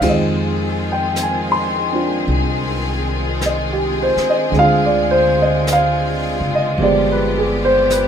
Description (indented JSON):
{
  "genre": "jazz ballad",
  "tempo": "53 BPM",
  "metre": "4/4",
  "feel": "swing 67% on 8ths",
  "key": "unclear",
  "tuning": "A4 = 439 Hz",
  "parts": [
    { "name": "warm baby grand piano", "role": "accompaniment", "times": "0.0-8.1 s", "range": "D3 to C6", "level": "-16 LUFS", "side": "right 1 dB", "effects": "none" },
    { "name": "clear studio string section", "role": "sustained chords", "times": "0.0-8.1 s", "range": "C3 to Ab4", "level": "-23 LUFS", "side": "left 1 dB", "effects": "none" },
    { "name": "upright bass", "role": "bass", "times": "0.0-8.1 s", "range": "F#1 to F2", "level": "-23 LUFS", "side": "left 1 dB", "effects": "none" },
    { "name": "jazz brush drum kit", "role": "drums", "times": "0.0-8.1 s", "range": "brushed snare drum, hi-hat, kick drum, ride cymbal, snare drum", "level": "-28 LUFS", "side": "left 2 dB", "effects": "none" }
  ],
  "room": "light reverb",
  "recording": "minimal, uncompressed stereo recording",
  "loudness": "-15 LUFS",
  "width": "side -8 dB against mid",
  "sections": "0.0-8.1 A section",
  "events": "none",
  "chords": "0.0 Fm7; 4.6 Dm7b5; 6.8 G7b9"
}